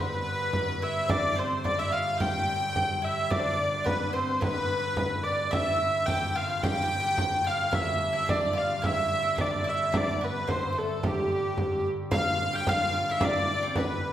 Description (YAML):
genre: medieval dance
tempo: 109 BPM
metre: 2/4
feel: straight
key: G mixolydian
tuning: A4 = 439 Hz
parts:
  - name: rich hurdy-gurdy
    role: melody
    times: 0.0-14.1 s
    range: G4 to G5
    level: -28 LUFS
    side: equal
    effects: none
  - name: mandolin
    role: second line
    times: 0.0-14.1 s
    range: G3 to G4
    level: -34 LUFS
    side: right 3 dB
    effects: none
  - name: rich fiddle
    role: second line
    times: 0.0-14.1 s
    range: G4 to G5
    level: -34 LUFS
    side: left 3 dB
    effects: none
  - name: pipe organ, foundations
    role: drone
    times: 0.0-14.1 s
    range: G2 to D3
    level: -36 LUFS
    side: left 1 dB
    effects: none
  - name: frame drum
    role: percussion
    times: 0.5-14.0 s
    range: none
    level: -31 LUFS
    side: right 1 dB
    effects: none
room: wet recital hall reverb, RT60 1.5 s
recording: heard from further back in the room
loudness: -25 LUFS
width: side -11 dB against mid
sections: 0.0-3.3 A section; 3.3-12.1 A section; 12.1-14.1 B section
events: none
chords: none